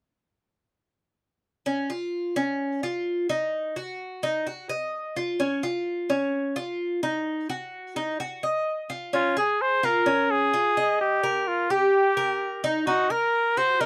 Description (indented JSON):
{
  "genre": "latin",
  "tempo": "128 BPM",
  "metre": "4/4",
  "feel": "straight",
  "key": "unclear",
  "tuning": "A4 = 440 Hz",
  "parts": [
    { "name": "Cuban tres", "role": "arpeggios", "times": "1.7-13.9 s", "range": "Db4 to Eb5", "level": "-28 LUFS", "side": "equal", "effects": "none" },
    { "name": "clear trumpet", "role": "melody", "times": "9.1-13.9 s", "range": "F4 to C5", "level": "-24 LUFS", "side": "equal", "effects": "none" }
  ],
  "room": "light reverb",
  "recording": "dry, close 1970s-style studio recording",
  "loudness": "-26 LUFS",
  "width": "mono",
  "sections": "1.7-9.1 A section; 9.1-13.9 B section",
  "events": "none",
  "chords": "1.7 Dbadd9; 3.5 Ebmadd9; 5.4 Dbadd9; 7.3 Ebmadd9; 9.1 Bbm7; 11.0 Eb; 12.9 Ebm"
}